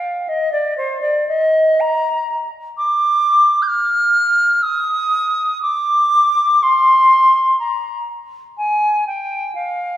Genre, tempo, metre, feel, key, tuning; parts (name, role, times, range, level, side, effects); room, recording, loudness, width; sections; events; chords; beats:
classical, baroque-style fantasia for unaccompanied flute; 57-64 BPM; 3/4; rubato; A4 = 444 Hz
silver concert flute; solo; 0.0-10.0 s; C5 to G6; -14 LUFS; equal
wet concert hall reverb, RT60 2.0 s; heard from further back in the room; -13 LUFS; side -13 dB against mid
0.0-10.0 A section
0.77 1.79 | 2.75 3.69 4.63 | 5.61 6.61 7.59 | 8.58 9.58